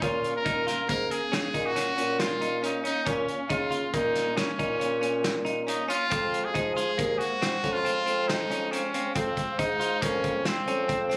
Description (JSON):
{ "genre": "progressive instrumental, band music in an uneven meter", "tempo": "138 BPM", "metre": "7/4", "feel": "straight", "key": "Bb minor", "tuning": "A4 = 442 Hz", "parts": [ { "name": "brilliant trumpet", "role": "melody", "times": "0.0-11.2 s", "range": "C4 to Bb4", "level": "-32 LUFS", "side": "equal", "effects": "none" }, { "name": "mellow tonewheel organ", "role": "accompaniment", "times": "0.0-11.2 s", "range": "Ab3 to F5", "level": "-40 LUFS", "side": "equal", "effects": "fast rotary speaker" }, { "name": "direct-recorded clean electric guitar", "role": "arpeggios", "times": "0.0-11.2 s", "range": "Bb3 to F4", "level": "-35 LUFS", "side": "equal", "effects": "none" }, { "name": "mellow bassoon", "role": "bass", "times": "0.0-11.2 s", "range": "Eb2 to F3", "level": "-33 LUFS", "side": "equal", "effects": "none" }, { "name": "loose indie drum kit", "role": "drums", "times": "0.0-11.2 s", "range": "hi-hat, kick drum, snare drum", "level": "-36 LUFS", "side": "equal", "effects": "none" } ], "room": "light reverb", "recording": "recorded on a phone in the room, club reverb", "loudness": "-27 LUFS", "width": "mono", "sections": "0.0-11.2 A section", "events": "none", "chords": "0.0 Bbm; 6.1 Fm" }